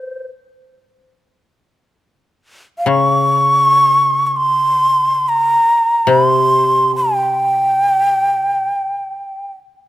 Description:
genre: japanese traditional, Japanese chamber music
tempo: free time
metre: none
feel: none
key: unclear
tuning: A4 = 438 Hz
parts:
  - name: breathy shakuhachi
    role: melody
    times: 0.0-9.5 s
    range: C5 to Db6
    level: -13 LUFS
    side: equal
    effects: none
  - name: koto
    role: accompaniment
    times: 2.9-8.7 s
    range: C3 to Db3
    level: -19 LUFS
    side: left 3 dB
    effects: none
room: light reverb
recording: close, detailed microphones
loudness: -12 LUFS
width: side -14 dB against mid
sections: 0.0-1.8 A section; 1.8-9.9 A section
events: none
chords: none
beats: free time

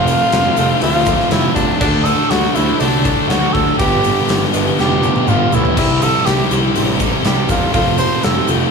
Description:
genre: classic rock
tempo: 121 BPM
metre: 4/4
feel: straight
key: G mixolydian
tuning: A4 = 440 Hz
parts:
  - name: growling tenor saxophone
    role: melody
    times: 0.0-8.5 s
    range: D4 to C5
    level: -18 LUFS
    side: equal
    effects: plate reverb
  - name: clear upright piano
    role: accompaniment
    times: 0.0-8.7 s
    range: B3 to C5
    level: -26 LUFS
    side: left 2 dB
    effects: none
  - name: distorted electric guitar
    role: riff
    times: 0.0-8.7 s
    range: F2 to E4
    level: -20 LUFS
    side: left 10 dB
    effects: overdrive
  - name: raw garage guitar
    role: riff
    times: 0.0-8.7 s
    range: F2 to G4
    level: -19 LUFS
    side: right 6 dB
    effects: overdrive
  - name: fuzz picked electric bass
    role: bass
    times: 0.0-8.6 s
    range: F1 to E2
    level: -20 LUFS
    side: equal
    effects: overdrive
  - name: huge arena drum kit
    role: drums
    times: 0.1-8.6 s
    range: crash cymbal, hi-hat, kick drum, snare drum, toms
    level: -19 LUFS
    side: equal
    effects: none
  - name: egg shaker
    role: percussion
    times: 0.1-8.7 s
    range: none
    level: -36 LUFS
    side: right 6 dB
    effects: none
room: moderate studio reverb, RT60 0.8 s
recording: small room ambience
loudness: -12 LUFS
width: side -5 dB against mid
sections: 0.0-8.7 A section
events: drum fill 4.8-5.8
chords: 0.0 F; 1.8 D; 3.8 G; 5.8 C; 7.7 F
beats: 0.33 0.82 1.32 | 1.81 2.31 2.80 3.30 | 3.79 4.29 4.78 5.27 | 5.77 6.26 6.75 7.25 | 7.74 8.23

